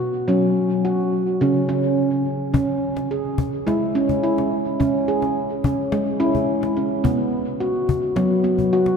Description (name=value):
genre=world meditative, meditative tuned percussion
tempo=107 BPM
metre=4/4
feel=straight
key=C# minor pentatonic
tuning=A4 = 440 Hz
part: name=handpan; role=arpeggios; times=0.0-9.0 s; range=C#3 to G#4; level=-19 LUFS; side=equal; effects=diffuse ambient delay
part: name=cajon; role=percussion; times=2.5-9.0 s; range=none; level=-27 LUFS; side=left 4 dB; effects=none
room=wet cathedral reverb, RT60 5.2 s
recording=in a vast, echoing space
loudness=-18 LUFS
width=side -6 dB against mid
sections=0.0-2.5 A section; 2.5-9.0 B section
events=none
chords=0.3 F#5; 1.4 N.C.; 2.5 C#m; 7.0 B5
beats=| 0.29 0.85 1.42 1.98 | 2.55 3.11 3.67 4.24 | 4.80 5.36 5.92 6.49 | 7.05 7.61 8.17 8.73